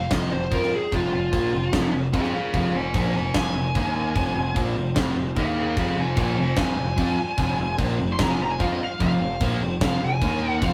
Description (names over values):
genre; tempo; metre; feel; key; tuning
hard rock; 148 BPM; 4/4; straight; F minor; A4 = 442 Hz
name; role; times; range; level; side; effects
high-gain lead guitar; melody; 0.0-10.7 s; F4 to C6; -29 LUFS; equal; distortion
overdriven tonewheel organ; sustained chords; 0.0-10.7 s; F3 to Bb4; -38 LUFS; equal; none
overdriven electric guitar; riff; 0.0-10.7 s; F2 to F4; -31 LUFS; equal; none
overdriven semi-hollow guitar; riff; 0.0-10.7 s; F2 to F4; -31 LUFS; equal; none
growling fingered electric bass; bass; 0.0-10.7 s; F1 to F2; -32 LUFS; equal; overdrive
gated 80s drum kit; drums; 0.1-10.7 s; crash cymbal, kick drum, snare drum; -29 LUFS; equal; none
sludgy distorted guitar; riff; 5.8-10.7 s; F2 to F4; -34 LUFS; equal; none
room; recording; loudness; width
moderate booth ambience, RT60 0.2 s; rough rehearsal-room recording; -23 LUFS; mono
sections
0.0-10.7 A section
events
lead electric guitar solo 0.0-10.7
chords
0.0 Fm; 3.7 Eb5; 4.2 Fm; 5.4 Eb5; 5.8 Fm; 10.2 Eb5